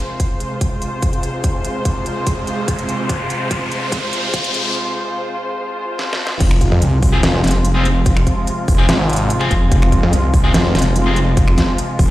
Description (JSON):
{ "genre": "heavy wobble dubstep", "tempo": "145 BPM", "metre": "4/4", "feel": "half-time", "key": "F minor", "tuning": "A4 = 440 Hz", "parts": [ { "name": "muted studio string section", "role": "sustained chords", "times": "0.0-12.1 s", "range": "C3 to C5", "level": "-22 LUFS", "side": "equal", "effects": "sidechain pumping, low-pass filter" }, { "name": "riser and swell", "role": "sound effects", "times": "0.0-6.4 s", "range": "none", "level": "-25 LUFS", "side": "left 1 dB", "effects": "none" }, { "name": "dubstep drum kit", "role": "drums", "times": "0.2-12.1 s", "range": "crash cymbal, finger snaps, hi-hat, snare drum", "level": "-22 LUFS", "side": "equal", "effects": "studio reverb" }, { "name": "electronic kick drum", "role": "drums", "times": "0.2-12.1 s", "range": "none", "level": "-17 LUFS", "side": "equal", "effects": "studio reverb" }, { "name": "wobble bass", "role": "bass", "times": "6.4-12.1 s", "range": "F1 to C2", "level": "-16 LUFS", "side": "equal", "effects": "chorus, overdrive" }, { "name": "snarling distorted saw bass", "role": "bass", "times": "6.7-10.7 s", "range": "F1 to F2", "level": "-16 LUFS", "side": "equal", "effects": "distortion, overdrive" }, { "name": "distorted electric guitar", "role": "stabs", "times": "7.1-11.2 s", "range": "C4 to Ab4", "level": "-24 LUFS", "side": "left 2 dB", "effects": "distortion, dub echo" } ], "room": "light reverb", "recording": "played on a big sound system in a bare room, stone room reverb, high-pass filter", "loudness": "-14 LUFS", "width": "side -16 dB against mid", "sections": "0.0-6.4 A section; 6.4-12.1 B section", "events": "build-up 0.0-6.4; riser 0.0-4.8; filter sweep 0.0-6.4; drum fill 3.1-4.8, 6.0-6.4; break 4.8-6.4; swell 5.6-6.4; drop 6.4-12.1", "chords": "0.0 Fm" }